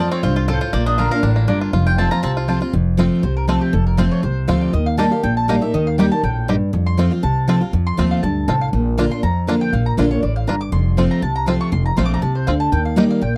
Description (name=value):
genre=bluegrass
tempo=240 BPM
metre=4/4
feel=swing 53% on 8ths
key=F mixolydian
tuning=A4 = 441 Hz
part: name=bluegrass banjo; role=melody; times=0.0-13.0 s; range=Bb3 to Bb4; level=-26 LUFS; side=equal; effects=none
part: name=mandolin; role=melody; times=0.0-2.3 s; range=F4 to Bb5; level=-26 LUFS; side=equal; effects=slapback echo
part: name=picked steel-string acoustic guitar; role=accompaniment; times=0.0-13.4 s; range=F2 to G4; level=-21 LUFS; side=equal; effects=none
part: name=mandolin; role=stabs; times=0.0-13.4 s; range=Bb3 to D6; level=-27 LUFS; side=equal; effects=none
part: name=upright bass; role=bass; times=0.0-13.4 s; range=F1 to F2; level=-22 LUFS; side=equal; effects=none
room=little or no reverb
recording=dry, close 1970s-style studio recording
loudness=-18 LUFS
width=mono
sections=0.0-2.7 A section; 2.7-13.4 B section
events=mandolin solo 2.7-13.4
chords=0.0 F; 0.7 Bb; 1.7 F; 4.7 Eb; 6.7 F; 8.7 Bb; 10.7 F; 12.7 Eb